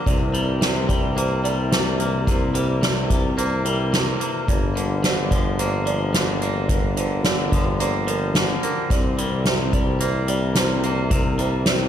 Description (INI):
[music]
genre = post-rock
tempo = 109 BPM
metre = 4/4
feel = straight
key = unclear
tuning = A4 = 436 Hz
[part]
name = pedal harmonium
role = sustained chords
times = 0.0-11.9 s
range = E3 to Bb4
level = -32 LUFS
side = left 1 dB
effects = none
[part]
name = felt-muted upright piano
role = arpeggios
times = 0.0-11.9 s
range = Bb4 to D5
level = -31 LUFS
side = right 8 dB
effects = digital delay
[part]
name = twangy electric guitar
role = arpeggios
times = 0.0-11.9 s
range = G2 to Bb3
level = -25 LUFS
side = left 2 dB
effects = spring reverb, digital delay
[part]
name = warm tuba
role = bass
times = 0.1-11.9 s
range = G1 to C2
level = -24 LUFS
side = equal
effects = none
[part]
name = soft-mallet drum kit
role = drums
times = 0.1-11.8 s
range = hi-hat, kick drum, snare drum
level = -22 LUFS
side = equal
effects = none
[sound]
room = light reverb, small room ambience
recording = none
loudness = -19 LUFS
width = side -10 dB against mid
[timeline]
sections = 0.0-11.9 A section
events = none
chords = 0.1 C7; 4.5 Gm7; 8.9 C7